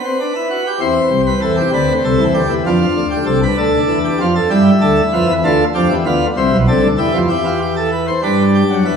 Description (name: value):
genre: classical, baroque-style 3-part fugue for pipe organ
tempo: 65 BPM (dotted quarters)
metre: 12/8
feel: straight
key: C major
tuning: A4 = 441 Hz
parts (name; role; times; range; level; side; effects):
- pipe organ, plenum; solo; 0.0-9.0 s; B1 to C5; -12 LUFS; equal; none
room: wet stone room reverb, RT60 1.3 s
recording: minimal, uncompressed stereo recording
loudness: -12 LUFS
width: side -6 dB against mid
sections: 0.0-9.0 A section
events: none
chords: 0.0 G; 0.8 C; 2.7 Dm; 4.5 G7; 6.4 C; 8.2 G